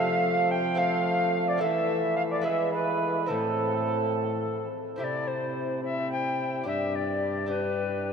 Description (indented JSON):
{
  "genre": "classical, renaissance-style consort dance",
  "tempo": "72 BPM (dotted quarters)",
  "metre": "6/8",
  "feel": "straight",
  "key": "unclear",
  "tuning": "A4 = 442 Hz",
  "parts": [
    { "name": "mellow tenor recorder", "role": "melody", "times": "0.0-8.1 s", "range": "A4 to G5", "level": "-31 LUFS", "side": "left 4 dB", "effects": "none" },
    { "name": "dark cor anglais", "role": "second line", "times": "0.0-8.1 s", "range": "E4 to G5", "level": "-30 LUFS", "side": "right 4 dB", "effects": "none" },
    { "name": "lute", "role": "accompaniment", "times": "0.0-8.1 s", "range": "G2 to A4", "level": "-37 LUFS", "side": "equal", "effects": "none" },
    { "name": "mellow bassoon", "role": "accompaniment", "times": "0.0-8.1 s", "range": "G#3 to D4", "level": "-33 LUFS", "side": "left 4 dB", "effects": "none" },
    { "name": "warm trombone", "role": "bass", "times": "0.0-8.1 s", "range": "G2 to F3", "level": "-32 LUFS", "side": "right 1 dB", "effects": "none" }
  ],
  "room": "wet cathedral reverb, RT60 5.6 s",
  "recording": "dark, warm production",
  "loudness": "-25 LUFS",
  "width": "side -6 dB against mid",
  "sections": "0.0-5.0 A section; 5.0-8.1 B section",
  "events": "none",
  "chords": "0.0 F; 1.6 Esus4; 2.5 E; 3.3 Am; 5.0 C; 6.7 G"
}